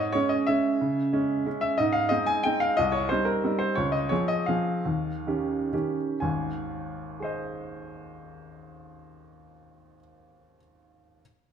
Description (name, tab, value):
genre	classical, piano waltz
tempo	118-195 BPM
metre	3/4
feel	rubato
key	Ab major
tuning	A4 = 443 Hz
part	bright upright piano	solo	0.0-11.2 s	Ab1 to Ab5	-25 LUFS	right 1 dB	none
room	wet recital hall reverb, RT60 1.6 s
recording	none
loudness	-24 LUFS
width	side -8 dB against mid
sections	0.0-6.2 A section; 6.2-9.1 B section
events	slowing down 3.3-6.2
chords	0.0 Dbm/Ab; 1.8 Ab; 2.8 Cm; 3.8 Dbmaj7; 4.9 Eb7; 6.2 Ab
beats	0.15 0.49 | 0.81 1.14 1.47 | 1.79 2.10 2.44 | 2.77 3.10 3.43 | 3.76 4.11 4.48 | 4.86 5.26 5.72 | 6.21 6.70 7.19 | 7.67 8.14 8.62